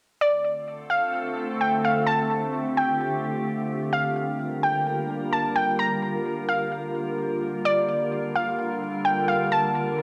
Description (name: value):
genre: hip hop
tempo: 129 BPM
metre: 4/4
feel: half-time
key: unclear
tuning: A4 = 441 Hz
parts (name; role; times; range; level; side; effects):
- warbly dusty pluck; melody; 0.2-10.0 s; D5 to Bb5; -27 LUFS; equal; chorus, low-pass filter, cassette tape, tape echo
- glassy FM pad; sustained chords; 0.7-10.0 s; D3 to Bb4; -29 LUFS; equal; ensemble chorus, built-in reverb, cassette tape
room: wet small room reverb, RT60 0.5 s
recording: home recording on cassette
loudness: -25 LUFS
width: mono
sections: 0.2-10.0 A section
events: none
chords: 0.2 Dm7; 3.9 Gm7